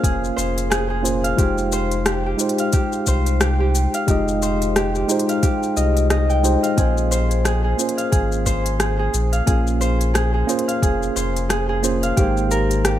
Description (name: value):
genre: sunset chillout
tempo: 89 BPM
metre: 4/4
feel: swing 58% on 16ths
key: Bb dorian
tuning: A4 = 440 Hz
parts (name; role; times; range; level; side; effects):
- tine electric piano; accompaniment; 0.0-13.0 s; Ab3 to Eb5; -23 LUFS; equal; auto-pan, low-pass filter, digital delay
- Celtic harp; arpeggios; 0.0-13.0 s; G4 to G5; -23 LUFS; right 1 dB; digital delay
- warm sub bass; bass; 0.0-13.0 s; F1 to C2; -21 LUFS; equal; none
- electronic kick drum; drums; 0.0-12.3 s; none; -19 LUFS; equal; studio ambience
- smooth R&B drum kit; drums; 0.0-13.0 s; hi-hat, rim click, shaker; -24 LUFS; left 2 dB; studio ambience
room: light reverb, digital ambience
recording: none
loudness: -17 LUFS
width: side -12 dB against mid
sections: 0.0-13.0 A section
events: filter sweep on tine electric piano 0.0-13.0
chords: 0.0 Bbm9; 1.4 Fm9; 6.8 Bbm9; 12.2 Abmaj9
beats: 0.04 0.71 | 1.39 2.06 2.73 3.41 | 4.08 4.76 5.43 6.11 | 6.78 7.45 8.13 8.80 | 9.48 10.15 10.82 11.50 | 12.17 12.85